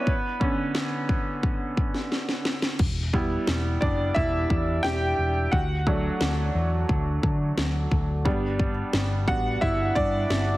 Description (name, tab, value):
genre	piano-driven pop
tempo	88 BPM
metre	4/4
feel	straight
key	D major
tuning	A4 = 439 Hz
part	bright upright piano	accompaniment	0.0-10.6 s	D3 to G5	-27 LUFS	right 1 dB	none
part	house drum kit	drums	0.1-10.5 s	crash cymbal, kick drum, snare drum	-27 LUFS	equal	none
part	hollow-body short-scale picked electric bass	bass	2.8-10.6 s	E1 to D3	-26 LUFS	equal	none
room	light reverb, digital ambience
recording	heavily compressed radio sound, multiband compression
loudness	-23 LUFS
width	side -17 dB against mid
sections	0.0-10.6 A section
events	upright piano solo 0.0-10.6; drum fill 2.1-2.8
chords	0.1 Bmadd9; 2.8 Em; 5.5 D; 8.3 G